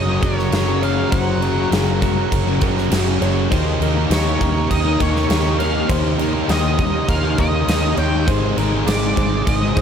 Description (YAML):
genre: rock, shoegaze and dream pop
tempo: 101 BPM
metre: 4/4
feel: straight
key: unclear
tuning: A4 = 440 Hz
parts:
  - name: octave-fuzz lead guitar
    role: melody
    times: 0.0-9.8 s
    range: Db5 to G5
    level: -26 LUFS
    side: equal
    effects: distortion, digital delay
  - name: warbly tape-like pad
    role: sustained chords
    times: 0.0-9.8 s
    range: Eb4 to C6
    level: -27 LUFS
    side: right 4 dB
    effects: chorus, built-in reverb
  - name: direct-recorded clean electric guitar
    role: arpeggios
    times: 0.0-9.8 s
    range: G4 to Db5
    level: -29 LUFS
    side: left 8 dB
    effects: wide subtle chorus, digital delay
  - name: biting overdriven guitar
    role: riff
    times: 0.0-9.8 s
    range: Gb2 to Ab4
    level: -26 LUFS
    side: right 13 dB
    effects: reverse reverb
  - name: crunchy overdriven guitar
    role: riff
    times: 0.0-9.8 s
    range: Gb2 to Eb4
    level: -25 LUFS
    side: right 1 dB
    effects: none
  - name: vintage muted fingered electric bass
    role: bass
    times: 0.0-9.8 s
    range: Gb1 to Eb2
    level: -21 LUFS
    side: equal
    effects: none
  - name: thick fuzz guitar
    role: riff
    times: 0.1-9.8 s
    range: Gb2 to Eb4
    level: -24 LUFS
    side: left 11 dB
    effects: distortion, lush chorus
  - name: huge arena drum kit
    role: drums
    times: 0.2-9.8 s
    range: crash cymbal, kick drum, snare drum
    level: -22 LUFS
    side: equal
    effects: none
room: small room ambience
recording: none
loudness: -15 LUFS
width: side -8 dB against mid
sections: 0.0-9.8 A section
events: none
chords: 0.0 Gbadd9; 3.5 Eb7; 8.3 Ab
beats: 0.52 | 1.12 1.72 2.31 2.91 | 3.51 4.11 4.70 5.30 | 5.89 6.49 7.09 7.68 | 8.28 8.87 9.46